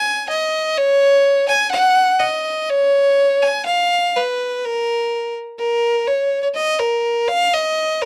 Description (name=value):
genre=alpine folk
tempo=124 BPM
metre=2/4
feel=rubato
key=unclear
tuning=A4 = 444 Hz
part: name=warm fiddle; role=solo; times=0.0-8.1 s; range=A#4 to G#5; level=-18 LUFS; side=equal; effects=none
room=light reverb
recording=dry, close 1970s-style studio recording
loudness=-17 LUFS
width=mono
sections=0.0-8.1 A section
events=none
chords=none